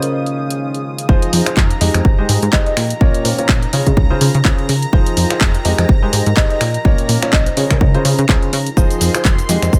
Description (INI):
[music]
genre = piano house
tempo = 125 BPM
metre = 4/4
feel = swing 56% on 16ths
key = F minor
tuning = A4 = 439 Hz
[part]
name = kalimba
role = melody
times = 0.0-9.8 s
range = Ab4 to Eb5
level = -28 LUFS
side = equal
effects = digital delay
[part]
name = analog string pad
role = sustained chords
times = 0.0-9.8 s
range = Bb5 to Eb6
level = -31 LUFS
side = equal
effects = ensemble chorus, sidechain pumping
[part]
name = warm concert grand piano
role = riff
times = 0.0-9.8 s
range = Bb2 to Eb5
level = -23 LUFS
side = equal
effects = sidechain pumping, digital delay
[part]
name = house drum kit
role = drums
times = 0.0-9.8 s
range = finger snaps, handclaps, hi-hat, shaker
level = -22 LUFS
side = equal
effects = none
[part]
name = deep dark ambient pad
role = texture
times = 0.0-9.8 s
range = Bb3 to G5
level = -32 LUFS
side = equal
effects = none
[part]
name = plucky analog bass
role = bass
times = 1.1-9.8 s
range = F1 to Db3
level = -19 LUFS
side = equal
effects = sidechain pumping
[part]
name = electronic kick drum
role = drums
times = 1.1-9.8 s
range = none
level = -16 LUFS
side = equal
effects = none
[sound]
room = little or no reverb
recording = none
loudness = -15 LUFS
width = mono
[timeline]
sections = 0.0-1.1 A section; 1.1-9.8 B section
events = drop 1.1-9.8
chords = 0.0 Dbmaj7; 1.1 Fm7; 2.0 Abmaj7; 2.8 Bbm; 3.7 Dbmaj7; 4.9 Fm7; 5.9 Abmaj7; 6.6 Bbm; 7.6 Dbmaj7; 8.8 Fm7